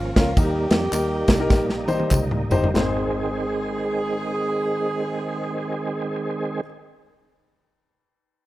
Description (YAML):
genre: uptempo gospel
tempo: 90-113 BPM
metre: 4/4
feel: swing 62% on 8ths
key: Ab major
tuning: A4 = 439 Hz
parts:
  - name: mellow saxophone section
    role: melody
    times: 0.0-6.6 s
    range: Bb3 to Ab4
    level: -28 LUFS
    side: right 1 dB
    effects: none
  - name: overdriven tonewheel organ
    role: sustained chords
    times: 0.0-6.6 s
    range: Eb3 to Ab4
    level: -27 LUFS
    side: right 3 dB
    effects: fast rotary speaker, chorus vibrato
  - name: fingered electric bass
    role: bass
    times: 0.0-6.6 s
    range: G1 to F2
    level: -28 LUFS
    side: equal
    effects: none
  - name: dark grand piano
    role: accompaniment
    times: 0.2-6.6 s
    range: Ab1 to C5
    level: -27 LUFS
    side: left 3 dB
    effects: none
  - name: modern studio drum kit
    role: drums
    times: 0.2-3.0 s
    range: kick drum, ride cymbal, snare drum, toms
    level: -20 LUFS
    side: equal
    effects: none
  - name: tambourine and handclaps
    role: percussion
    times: 0.2-3.1 s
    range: none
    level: -36 LUFS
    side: right 1 dB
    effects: none
room: studio ambience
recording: rough home demo mix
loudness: -20 LUFS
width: side -16 dB against mid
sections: 0.0-2.8 A section; 2.8-8.1 B section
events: slowing down 0.0-2.8; drum fill 1.5-2.8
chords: 0.4 Eb; 2.8 Ab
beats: | 0.37 0.93 1.50 2.11 | 2.76 3.42 4.09 4.75 | 5.42 6.08